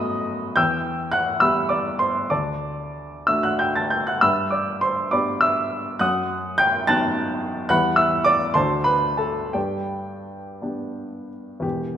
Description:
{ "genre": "classical, romantic character piece for solo piano", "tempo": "54-75 BPM (dotted quarters)", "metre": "6/8", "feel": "rubato", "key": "G major", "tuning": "A4 = 440 Hz", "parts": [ { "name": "warm upright piano", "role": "solo", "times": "0.0-12.0 s", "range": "E1 to A6", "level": "-20 LUFS", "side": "equal", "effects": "none" } ], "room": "moderate concert hall reverb, RT60 2.4 s", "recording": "minimal, uncompressed stereo recording", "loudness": "-19 LUFS", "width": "side -9 dB against mid", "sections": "0.0-11.6 A section", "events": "none", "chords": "0.0 B7/F#; 0.6 Em; 2.3 D; 4.2 G; 6.0 B7/F#; 7.7 Em; 8.6 D7; 9.5 G" }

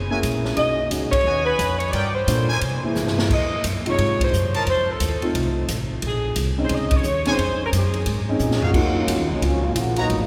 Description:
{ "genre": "jazz, big band swing", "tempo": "176 BPM", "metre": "4/4", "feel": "swing 63% on 8ths", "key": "Bb minor", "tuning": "A4 = 440 Hz", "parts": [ { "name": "clear saxophone section", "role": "melody", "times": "0.0-8.3 s", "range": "Ab4 to D#5", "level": "-27 LUFS", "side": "equal", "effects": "none" }, { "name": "upright bass", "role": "bass", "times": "0.0-10.3 s", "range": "Gb1 to C3", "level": "-27 LUFS", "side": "equal", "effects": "none" }, { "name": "warm concert grand piano", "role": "accompaniment", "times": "0.1-9.3 s", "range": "C3 to A4", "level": "-28 LUFS", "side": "equal", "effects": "none" }, { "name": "bright trumpet section", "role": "stabs", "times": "0.1-4.6, 7.3-10.1 s", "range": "Eb4 to Bb5", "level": "-33 LUFS", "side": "equal", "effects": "none" }, { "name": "swinging big-band drum kit", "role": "drums", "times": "0.2-10.2 s", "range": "crash cymbal, hi-hat, kick drum, ride cymbal, snare drum, toms", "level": "-29 LUFS", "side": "equal", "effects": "none" }, { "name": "mellow trombone section", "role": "second line", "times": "8.4-10.3 s", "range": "Db3 to Ab4", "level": "-26 LUFS", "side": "equal", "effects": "none" } ], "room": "wet cathedral reverb, RT60 5.4 s", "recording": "recorded in a church or concert hall", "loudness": "-21 LUFS", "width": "mono", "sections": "0.0-8.7 A section; 8.7-10.3 B section", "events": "band accent 1.1, 4.2, 6.9; drum fill 3.0-3.3, 8.4-8.7; trombone section solo 8.7-10.3", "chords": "0.0 Gb9; 0.6 B6; 1.9 Gm7; 2.6 C7b13; 3.3 Fm7; 4.7 F7; 6.0 Bbm11; 8.7 Ebm9" }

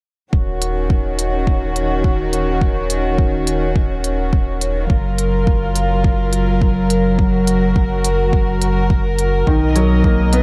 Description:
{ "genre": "piano and strings electronica", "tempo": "105 BPM", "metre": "4/4", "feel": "straight", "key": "unclear", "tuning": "A4 = 440 Hz", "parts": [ { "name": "dark studio string section", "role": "sustained chords", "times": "0.3-10.4 s", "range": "D#3 to D#5", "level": "-21 LUFS", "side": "equal", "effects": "sidechain pumping" }, { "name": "round analog bass", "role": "bass", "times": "0.3-10.4 s", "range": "D#1 to B1", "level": "-22 LUFS", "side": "equal", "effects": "sidechain pumping" }, { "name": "electronic kick drum", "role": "drums", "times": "0.3-10.2 s", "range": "none", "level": "-19 LUFS", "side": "equal", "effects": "none" }, { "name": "electronic hi-hat", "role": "drums", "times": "0.6-10.4 s", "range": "none", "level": "-26 LUFS", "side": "equal", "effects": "none" }, { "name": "clear baby grand piano", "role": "riff", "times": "9.5-10.4 s", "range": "D#3 to B3", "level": "-18 LUFS", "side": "equal", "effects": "delay" } ], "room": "light reverb, small room ambience", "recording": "dark, warm production", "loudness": "-17 LUFS", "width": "mono", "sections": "0.3-10.4 A section", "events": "none", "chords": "0.3 D#m7; 4.9 F#maj7; 9.5 Bmaj7" }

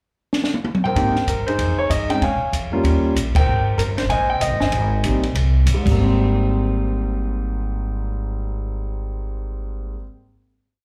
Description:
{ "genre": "jazz piano trio", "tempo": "192 BPM", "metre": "4/4", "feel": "swing 62% on 8ths", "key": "Ab major", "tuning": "A4 = 436 Hz", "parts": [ { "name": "compact cocktail drum kit", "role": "drums", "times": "0.3-5.9 s", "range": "crash cymbal, hi-hat, kick drum, ride cymbal, snare drum, toms", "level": "-26 LUFS", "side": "equal", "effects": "none" }, { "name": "dark baby grand piano", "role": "melody", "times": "0.8-10.0 s", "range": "Ab2 to Ab5", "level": "-24 LUFS", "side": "equal", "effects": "plate reverb, slapback echo" }, { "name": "upright bass", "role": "bass", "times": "1.0-9.9 s", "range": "G1 to Bb2", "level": "-23 LUFS", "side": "equal", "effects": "none" } ], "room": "light reverb", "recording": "live gig heard through the venue's PA, club reverb", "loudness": "-20 LUFS", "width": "mono", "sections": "0.0-1.0 pickup bar; 1.0-6.0 A section; 6.0-8.5 final hit", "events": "drum fill 0.3-1.0; band accent 3.3", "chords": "0.0 N.C.; 1.0 Abmaj9; 1.6 Fm9; 2.2 Bbm7; 2.8 Eb7; 3.5 Abmaj9" }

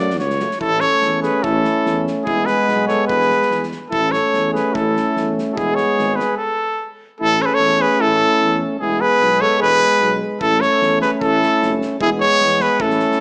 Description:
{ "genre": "balkan folk, Balkan brass band", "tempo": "148 BPM", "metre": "2/4", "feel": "swing 55% on 16ths", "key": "A major", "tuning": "A4 = 440 Hz", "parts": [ { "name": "clear trumpet", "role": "melody", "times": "0.0-13.2 s", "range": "G#4 to D5", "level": "-19 LUFS", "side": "equal", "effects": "none" }, { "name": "clear trombone", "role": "accompaniment", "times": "0.0-13.2 s", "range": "A3 to C#4", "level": "-28 LUFS", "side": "equal", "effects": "none" }, { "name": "warm euphonium", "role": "accompaniment", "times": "0.0-13.2 s", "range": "F#3 to A3", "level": "-27 LUFS", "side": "equal", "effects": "none" }, { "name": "mellow tuba", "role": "bass", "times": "0.0-13.0 s", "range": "E1 to F#2", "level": "-29 LUFS", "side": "equal", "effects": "none" }, { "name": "loose indie drum kit", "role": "percussion", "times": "0.1-6.2, 10.4-13.2 s", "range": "kick drum, snare drum", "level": "-37 LUFS", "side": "equal", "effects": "none" }, { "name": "mellow flugelhorn", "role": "second line", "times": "0.6-13.2 s", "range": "E4 to A4", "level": "-26 LUFS", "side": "equal", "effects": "none" } ], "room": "moderate recital hall reverb, RT60 1.6 s", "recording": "small speaker sound", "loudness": "-17 LUFS", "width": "mono", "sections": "0.6-7.2 A section; 7.2-13.2 A section", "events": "speeding up 0.0-13.2; stop 6.4-7.2", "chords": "0.0 F#m; 0.6 A; 2.3 E; 3.9 A; 5.6 E; 6.4 N.C.; 7.2 A; 8.8 E; 10.4 A; 12.0 E; 12.8 A" }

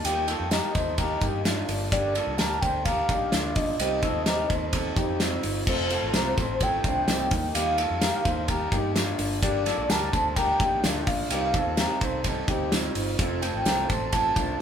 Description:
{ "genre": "jangly indie pop", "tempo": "128 BPM", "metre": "4/4", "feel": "straight", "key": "F mixolydian", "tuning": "A4 = 440 Hz", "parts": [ { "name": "warm velvety synth lead", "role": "melody", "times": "0.0-14.6 s", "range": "C5 to A5", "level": "-28 LUFS", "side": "equal", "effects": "chorus" }, { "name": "fingerpicked steel-string acoustic guitar", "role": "accompaniment", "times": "0.0-14.6 s", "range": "F2 to Eb4", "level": "-34 LUFS", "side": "right 5 dB", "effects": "none" }, { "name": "electric guitar through a small old amp", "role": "arpeggios", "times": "0.0-14.6 s", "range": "Bb3 to C5", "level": "-30 LUFS", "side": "left 3 dB", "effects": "none" }, { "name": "vintage muted fingered electric bass", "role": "bass", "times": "0.0-14.6 s", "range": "F1 to G2", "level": "-33 LUFS", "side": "equal", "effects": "none" }, { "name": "loose indie drum kit", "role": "drums", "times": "0.0-14.5 s", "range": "crash cymbal, hi-hat, kick drum, ride cymbal, snare drum", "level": "-27 LUFS", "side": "equal", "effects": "none" }, { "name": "tambourine", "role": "percussion", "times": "0.3-14.5 s", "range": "none", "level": "-41 LUFS", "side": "right 6 dB", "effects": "none" } ], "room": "moderate large studio reverb, RT60 1.3 s", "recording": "band playing live in one room", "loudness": "-23 LUFS", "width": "side -8 dB against mid", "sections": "0.0-5.7 A section; 5.7-14.6 A section", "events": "none", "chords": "0.0 Eb; 1.7 Gm; 3.8 Cm; 5.7 F; 7.3 Eb; 9.2 Gm; 13.2 F" }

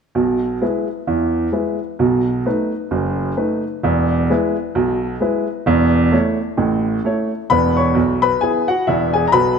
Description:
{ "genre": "jazz, stride piano", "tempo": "131 BPM", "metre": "4/4", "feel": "swing 58% on 8ths", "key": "E major", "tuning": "A4 = 441 Hz", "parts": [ { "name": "clear upright piano", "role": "solo", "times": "0.1-9.6 s", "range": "E1 to C#6", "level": "-15 LUFS", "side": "equal", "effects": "none" } ], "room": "moderate scoring stage reverb, RT60 1.6 s", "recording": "none", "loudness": "-16 LUFS", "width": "side -6 dB against mid", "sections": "0.2-7.5 A section; 7.5-9.6 B section", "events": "none", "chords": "0.2 E/B; 2.0 B7; 3.8 E; 5.7 A/E; 7.5 E" }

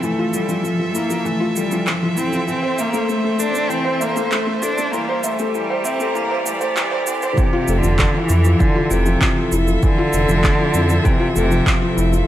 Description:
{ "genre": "piano and strings electronica", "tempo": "98 BPM", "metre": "4/4", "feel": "straight", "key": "F major", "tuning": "A4 = 441 Hz", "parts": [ { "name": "rich cello", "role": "melody", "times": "0.0-11.9 s", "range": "C3 to D4", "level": "-21 LUFS", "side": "right 1 dB", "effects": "digital delay" }, { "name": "bright string quartet", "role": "sustained chords", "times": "0.0-12.3 s", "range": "G3 to Bb5", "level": "-26 LUFS", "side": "right 1 dB", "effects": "sidechain pumping" }, { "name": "felt-muted upright piano", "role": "riff", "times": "0.0-12.3 s", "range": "E3 to E5", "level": "-21 LUFS", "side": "left 2 dB", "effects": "digital delay" }, { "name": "electronic shaker and handclaps", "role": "drums", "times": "0.0-12.2 s", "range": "none", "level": "-25 LUFS", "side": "right 1 dB", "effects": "none" }, { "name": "electronic kick drum", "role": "drums", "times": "7.4-11.8 s", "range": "none", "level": "-18 LUFS", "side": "equal", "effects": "none" }, { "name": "dark detuned saw bass", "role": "bass", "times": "7.7-12.2 s", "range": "F1 to F2", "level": "-17 LUFS", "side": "equal", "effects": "sidechain pumping" } ], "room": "light reverb, small room ambience", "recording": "high-pass filter", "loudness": "-16 LUFS", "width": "side -12 dB against mid", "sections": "0.0-7.4 A section; 7.4-12.3 B section", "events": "build-up 0.0-7.4; drop 7.4-12.3", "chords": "0.0 Fmaj7; 2.5 Am; 4.9 Gm; 7.4 Fmaj7" }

